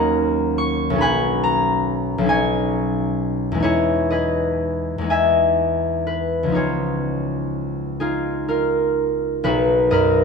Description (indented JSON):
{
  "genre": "classical, solo harp piece",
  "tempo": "39-47 BPM (dotted quarters)",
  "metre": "6/8",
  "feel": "rubato",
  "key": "B major",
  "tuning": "A4 = 440 Hz",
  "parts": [
    { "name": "concert harp", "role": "solo", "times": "0.0-10.2 s", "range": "B1 to C#6", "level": "-18 LUFS", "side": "left 1 dB", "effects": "none" }
  ],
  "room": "moderate recital hall reverb, RT60 1.6 s",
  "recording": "close, detailed microphones",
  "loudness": "-18 LUFS",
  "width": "side -5 dB against mid",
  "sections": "0.0-9.5 A section",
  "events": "none",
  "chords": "0.0 D#m7; 1.0 B69; 3.6 Emaj7; 6.6 C#9; 9.5 Bmaj9"
}